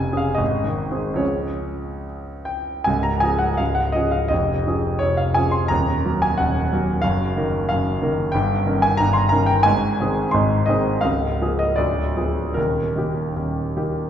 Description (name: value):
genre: classical, romantic character piece for solo piano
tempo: 68-93 BPM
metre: 2/4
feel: rubato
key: Db major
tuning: A4 = 440 Hz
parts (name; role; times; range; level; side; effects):
- clear concert grand piano; solo; 0.0-14.1 s; Db1 to C6; -18 LUFS; equal; none
room: wet recital hall reverb, RT60 1.7 s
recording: heard from further back in the room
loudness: -18 LUFS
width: side -9 dB against mid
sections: 0.0-2.9 A section; 2.9-14.1 A section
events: none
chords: 0.4 Ab; 1.2 Db; 4.3 Db/F; 5.7 Ebm; 7.0 Ebm/Gb; 8.3 Eb7/G; 9.7 Ab; 11.0 Db6; 11.8 Ddim7; 12.6 Eb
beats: 0.40 | 1.22 2.07 | 2.88 3.60 | 4.30 5.02 | 5.70 6.38 | 7.03 7.69 | 8.33 8.98 | 9.66 10.35 | 11.04 11.78 | 12.56 13.36